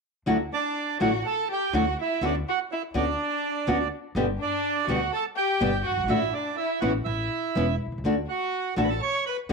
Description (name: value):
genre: tango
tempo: 124 BPM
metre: 4/4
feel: rubato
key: D major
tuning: A4 = 440 Hz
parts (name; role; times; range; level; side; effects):
- nylon-string guitar; accompaniment; 0.3-9.5 s; B2 to G4; -26 LUFS; left 1 dB; none
- upright bass; bass; 0.3-9.5 s; E1 to D2; -31 LUFS; left 1 dB; transformer saturation
- bandoneon; melody; 0.5-9.4 s; D4 to C#6; -28 LUFS; right 11 dB; none
- rich violin; second line; 0.5-9.4 s; D4 to C#5; -32 LUFS; left 12 dB; none
room: moderate spring reverb, RT60 1.4 s, studio reverb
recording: 1960s-style stereo with parts hard left and right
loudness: -24 LUFS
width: side -4 dB against mid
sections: 0.3-9.5 A section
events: none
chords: 0.3 Dadd9; 2.2 Bmadd9/D; 4.2 G; 6.1 D/A; 7.1 Aadd9; 8.0 D